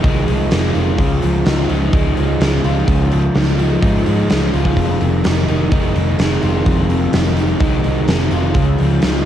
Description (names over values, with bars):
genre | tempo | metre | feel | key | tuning
rock, shoegaze and dream pop | 127 BPM | 4/4 | straight | F minor | A4 = 440 Hz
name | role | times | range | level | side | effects
crunchy overdriven guitar | riff | 0.0-9.3 s | F2 to F4 | -20 LUFS | left 7 dB | wide subtle chorus, cassette tape
overdriven semi-hollow guitar | riff | 0.0-9.3 s | F2 to Eb4 | -20 LUFS | right 8 dB | reverse reverb, cassette tape
vintage muted fingered electric bass | bass | 0.0-9.2 s | F1 to Ab2 | -18 LUFS | equal | transformer saturation
huge arena drum kit | drums | 0.0-9.1 s | hi-hat, kick drum, snare drum | -18 LUFS | equal | cassette tape
room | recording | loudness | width
light reverb | home recording on cassette | -13 LUFS | side -10 dB against mid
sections
0.0-9.3 A section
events
none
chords
0.0 Fm7; 1.0 Dbadd9; 4.8 Fm7; 8.6 Dbadd9